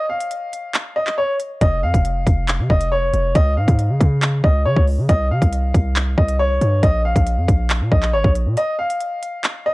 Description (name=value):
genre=hip hop, drill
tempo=138 BPM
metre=4/4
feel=half-time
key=unclear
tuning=A4 = 441 Hz
part: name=clear upright piano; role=melody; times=0.0-9.7 s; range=Db5 to F5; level=-21 LUFS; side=equal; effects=none
part: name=drill drum kit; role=drums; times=0.2-9.5 s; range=handclaps, hi-hat, kick drum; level=-17 LUFS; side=equal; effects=vintage 12-bit sampler grit
part: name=hard-hitting 808-style bass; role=bass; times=1.6-8.6 s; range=F1 to Db3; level=-18 LUFS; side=equal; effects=none
room=digital ambience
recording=dry, gritty hardware recording, cassette tape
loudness=-16 LUFS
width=side -20 dB against mid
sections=0.0-9.7 A section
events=break 0.0-1.6, 8.6-9.7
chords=0.0 N.C.; 1.6 F5; 3.4 Db; 5.1 C5; 6.8 Bb5; 8.6 N.C.